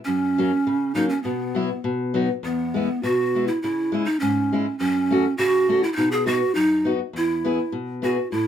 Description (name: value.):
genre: alpine folk, alpine dance band.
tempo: 102 BPM.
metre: 2/4.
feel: straight.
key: E major.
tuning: A4 = 442 Hz.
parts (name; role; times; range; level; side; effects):
breathy bright large pan pipes; melody; 0.0-8.5 s; B3 to G#4; -21 LUFS; right 2 dB; none.
fingerpicked steel-string acoustic guitar; accompaniment; 0.1-8.5 s; E2 to G#4; -25 LUFS; left 3 dB; none.
room: wet small room reverb, RT60 0.5 s.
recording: minimal, uncompressed stereo recording.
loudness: -20 LUFS.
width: side -9 dB against mid.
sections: 0.0-8.5 A section.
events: none.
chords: 0.1 F#; 1.2 Bsus4; 1.8 B; 2.4 E; 3.6 C#m; 4.8 F#m; 6.0 B; 7.2 E.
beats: | 0.07 0.66 | 1.25 1.84 | 2.44 3.03 | 3.62 4.22 | 4.80 5.39 | 5.97 6.56 | 7.15 7.74 | 8.33.